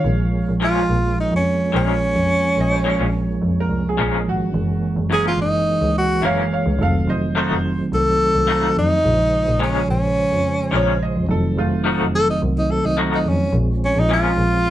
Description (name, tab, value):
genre	blues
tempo	107 BPM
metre	4/4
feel	swing 53% on 16ths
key	Bb minor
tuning	A4 = 441 Hz
part	bright upright piano	second line	0.0-12.0 s	A3 to F5	-25 LUFS	right 1 dB	none
part	mellow tonewheel organ	accompaniment	0.0-14.7 s	Db3 to C5	-22 LUFS	right 3 dB	chorus vibrato
part	warm double bass	bass	0.0-14.6 s	F1 to F2	-22 LUFS	left 1 dB	none
part	warm tenor saxophone	melody	0.6-14.7 s	Db4 to A4	-19 LUFS	equal	none
part	electric guitar through a small old amp	stabs	0.6-14.3 s	Gb2 to Gb4	-22 LUFS	left 4 dB	tremolo
room	moderate studio reverb, RT60 0.6 s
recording	band playing live in one room, nothing above 10.4 kHz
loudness	-16 LUFS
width	side -13 dB against mid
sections	0.0-13.5 A section; 13.5-14.7 B section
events	tenor saxophone solo 13.5-14.7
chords	0.1 Bbm7; 4.5 Gb7; 6.8 F7b9; 9.0 Bbm7; 11.3 F7b9; 13.5 Bbm7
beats	| 0.05 0.61 1.18 1.74 | 2.30 2.86 3.42 3.98 | 4.55 5.11 5.67 6.23 | 6.79 7.36 7.92 8.48 | 9.04 9.61 10.17 10.73 | 11.29 11.86 12.42 12.98 | 13.54 14.10 14.66